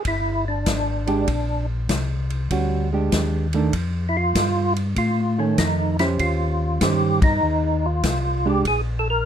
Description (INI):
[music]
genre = soul jazz organ trio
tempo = 98 BPM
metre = 4/4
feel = swing 67% on 8ths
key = Bb mixolydian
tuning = A4 = 440 Hz
[part]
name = percussive tonewheel organ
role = melody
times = 0.0-9.3 s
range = Db4 to Bb4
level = -23 LUFS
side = equal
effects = slow rotary speaker, chorus vibrato
[part]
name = mellow tonewheel organ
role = bass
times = 0.0-9.2 s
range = G1 to A2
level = -23 LUFS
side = left 1 dB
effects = chorus vibrato, slow rotary speaker
[part]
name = vintage drum kit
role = drums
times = 0.0-8.8 s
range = hi-hat, kick drum, ride cymbal, snare drum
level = -25 LUFS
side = left 1 dB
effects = none
[part]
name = hollow-body jazz guitar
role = accompaniment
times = 1.1-8.6 s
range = Eb3 to C5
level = -23 LUFS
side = right 4 dB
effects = none
[sound]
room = little or no reverb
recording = close, detailed microphones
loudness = -19 LUFS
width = side -9 dB against mid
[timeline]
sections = 0.0-9.3 A section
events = band accent 7.1-7.4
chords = 0.0 Bb13; 3.7 F9; 6.2 Eb13; 8.7 Bb5